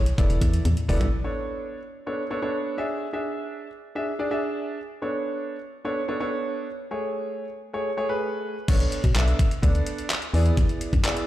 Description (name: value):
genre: dance-pop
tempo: 127 BPM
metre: 4/4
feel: straight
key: unclear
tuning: A4 = 440 Hz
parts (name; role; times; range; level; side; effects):
- organ-like FM bass; bass; 0.0-1.1, 8.7-11.0 s; E1 to B2; -22 LUFS; equal; sidechain pumping
- detuned 8-bit digital drum machine; drums; 0.1-1.1, 8.7-11.3 s; crash cymbal, handclaps, hi-hat, kick drum, toms; -23 LUFS; equal; overdrive
- warm concert grand piano; accompaniment; 0.2-11.3 s; A3 to E5; -28 LUFS; right 1 dB; sidechain pumping
room: light reverb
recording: played on a big sound system in a bare room, large studio reverb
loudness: -23 LUFS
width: side -14 dB against mid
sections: 0.0-1.1 A section; 1.1-8.7 B section; 8.7-11.3 A section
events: drop 0.0-1.1, 8.7-11.3; drum fill 0.7-1.1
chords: 0.2 E7sus4; 1.1 Bm9; 2.8 E7; 4.9 Bm9; 6.8 Amaj7; 8.7 Bm9; 10.3 E7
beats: 0.18 0.65 | 1.12 1.60 2.07 2.54 | 3.02 3.49 3.96 4.43 | 4.91 5.38 5.85 6.32 | 6.79 7.27 7.74 8.21 | 8.68 9.16 9.63 10.10 | 10.57 11.05